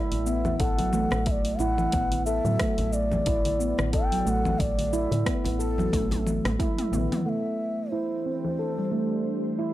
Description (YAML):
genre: organic downtempo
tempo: 90 BPM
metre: 4/4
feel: swing 57% on 16ths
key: unclear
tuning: A4 = 440 Hz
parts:
  - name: handpan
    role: arpeggios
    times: 0.0-9.7 s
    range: F#3 to A4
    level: -28 LUFS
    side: right 1 dB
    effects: low-pass filter, tape echo
  - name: woody FM bass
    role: bass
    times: 0.1-7.1 s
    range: A1 to A2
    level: -29 LUFS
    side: equal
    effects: transformer saturation, sidechain pumping
  - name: deep house drum kit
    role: drums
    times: 0.1-8.6 s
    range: congas, hi-hat, rim click, shaker, toms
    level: -32 LUFS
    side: left 2 dB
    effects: overdrive, low-pass filter on hats, low-pass filter on perc, low-pass filter on snare, low-pass filter on toms
  - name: congas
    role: percussion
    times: 0.1-7.1 s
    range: none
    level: -36 LUFS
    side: left 2 dB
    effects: none
  - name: mellow hollow bass bansuri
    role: melody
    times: 0.3-9.6 s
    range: A4 to G5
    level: -31 LUFS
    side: left 1 dB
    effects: tape echo
  - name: electronic kick drum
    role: drums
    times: 0.6-6.7 s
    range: none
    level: -29 LUFS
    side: equal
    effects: overdrive
  - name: ethereal airy pad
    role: sustained chords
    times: 7.8-9.7 s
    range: E3 to C5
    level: -32 LUFS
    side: right 2 dB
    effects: ensemble chorus, built-in reverb, sidechain pumping
room: little or no reverb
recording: dry, gritty hardware recording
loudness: -24 LUFS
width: side -14 dB against mid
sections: 0.0-7.3 A section; 7.3-9.7 B section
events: drum fill 5.9-7.3; filter sweep on handpan 7.3-9.7; filter sweep on ambient pad 7.3-9.7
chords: 0.0 Bm7/A; 7.3 Am